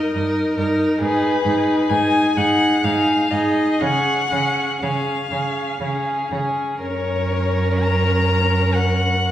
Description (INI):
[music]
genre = classical, slow romantic movement for string quartet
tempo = 56-69 BPM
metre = 3/4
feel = rubato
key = F# major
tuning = A4 = 440 Hz
[part]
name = warm violin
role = melody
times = 0.0-9.3 s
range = B4 to A#5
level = -22 LUFS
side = left 5 dB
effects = none
[part]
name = rich violin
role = second line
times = 0.0-9.3 s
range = G#4 to A#4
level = -23 LUFS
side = equal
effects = none
[part]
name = warm viola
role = accompaniment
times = 0.0-9.3 s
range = C#4 to D#4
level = -22 LUFS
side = right 1 dB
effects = none
[part]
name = rich cello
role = bass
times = 0.1-9.3 s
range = F#2 to C#3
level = -23 LUFS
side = right 2 dB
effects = none
[sound]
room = wet recital hall reverb, RT60 1.4 s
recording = heard from further back in the room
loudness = -17 LUFS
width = side -12 dB against mid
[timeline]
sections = 0.0-9.3 A section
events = none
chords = 0.0 D#/G; 1.0 G#m; 3.8 C#; 6.8 F#